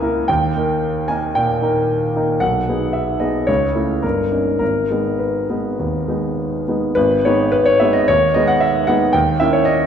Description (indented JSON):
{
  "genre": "classical, romantic character piece for solo piano",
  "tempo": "101-115 BPM",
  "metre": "4/4",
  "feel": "rubato",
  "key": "G# minor",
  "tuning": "A4 = 440 Hz",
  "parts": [
    { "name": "warm grand piano", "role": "solo", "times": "0.0-9.9 s", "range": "G1 to C#6", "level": "-15 LUFS", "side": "equal", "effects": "none" }
  ],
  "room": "wet recital hall reverb, RT60 1.6 s",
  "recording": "recorded in a church or concert hall",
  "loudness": "-15 LUFS",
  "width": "side -8 dB against mid",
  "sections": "0.0-7.0 A section; 7.0-9.9 A section",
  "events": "none",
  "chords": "0.3 D#; 2.4 G#m/B; 3.5 A/C#; 4.0 D#7/G; 4.6 G#m; 9.1 D#5"
}